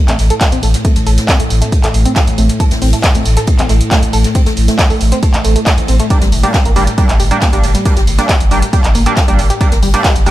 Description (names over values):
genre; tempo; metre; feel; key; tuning
driving peak-time techno; 137 BPM; 4/4; straight; unclear; A4 = 439 Hz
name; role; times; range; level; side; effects
analog drone; drone; 0.2-10.3 s; A2; -21 LUFS; left 1 dB; chorus, sidechain pumping
tight sequenced synth; riff; 0.1-10.3 s; G3 to A4; -20 LUFS; equal; chorus, overdrive, cassette tape, sidechain pumping, tape echo
warm sub bass; bass; 0.1-10.3 s; G1 to A1; -14 LUFS; equal; overdrive, sidechain pumping, low-pass filter
punchy analog drum machine; drums; 0.1-10.3 s; handclaps, hi-hat; -18 LUFS; right 1 dB; sidechain pumping on hats, sidechain pumping on cymbals
jazz brush drum kit; drums; 0.2-10.3 s; hi-hat, ride cymbal, snare drum; -25 LUFS; right 1 dB; sidechain pumping on cymbals, high-pass filter on cymbals, sidechain pumping on hats, high-pass filter on hats, high-pass filter on snare, high-pass filter on room, tape echo
electronic kick drum; drums; 0.4-10.1 s; none; -13 LUFS; equal; none
sync-sweep polysynth; stabs; 6.1-10.3 s; G3 to D4; -17 LUFS; right 3 dB; chorus, vintage 12-bit sampler grit, sidechain pumping, tape echo
room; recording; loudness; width
little or no reverb; echo-heavy mix; -9 LUFS; side -15 dB against mid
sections
0.0-10.3 A section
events
none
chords
0.0 N.C.; 6.1 Gm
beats
0.41 | 0.85 1.29 1.72 2.16 | 2.60 3.04 3.48 3.91 | 4.35 4.79 5.23 5.67 | 6.10 6.54 6.98 7.42 | 7.86 8.29 8.73 9.17 | 9.61 10.04